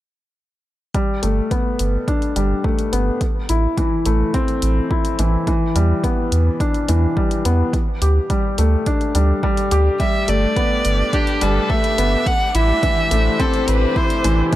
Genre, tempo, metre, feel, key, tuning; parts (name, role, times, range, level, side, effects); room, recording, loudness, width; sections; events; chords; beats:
piano and strings electronica; 106 BPM; 4/4; straight; G major; A4 = 440 Hz
felt-muted upright piano; riff; 0.9-14.6 s; E3 to G4; -20 LUFS; left 2 dB; tape echo
electronic hi-hat; drums; 0.9-14.6 s; -29 LUFS; left 1 dB
electronic kick drum; drums; 0.9-14.6 s; -21 LUFS; equal
warm sub bass; bass; 1.2-14.4 s; G1 to E2; -17 LUFS; equal; sidechain pumping
rich violin; melody; 10.0-14.4 s; G4 to F#5; -20 LUFS; right 2 dB
rich studio string section; sustained chords; 10.0-14.6 s; A3 to C5; -27 LUFS; left 1 dB; sidechain pumping
studio ambience; -16 LUFS; side -14 dB against mid
0.9-14.6 A section
0.9 Gadd9; 3.2 Am; 5.5 Em7; 7.7 Dsus4; 10.0 Gadd9; 12.3 Am
| 0.94 1.51 2.08 2.64 | 3.21 3.77 4.34 4.91 | 5.47 6.04 6.61 7.17 | 7.74 8.30 8.87 9.44 | 10.00 10.57 11.13 11.70 | 12.27 12.83 13.40 13.96 | 14.53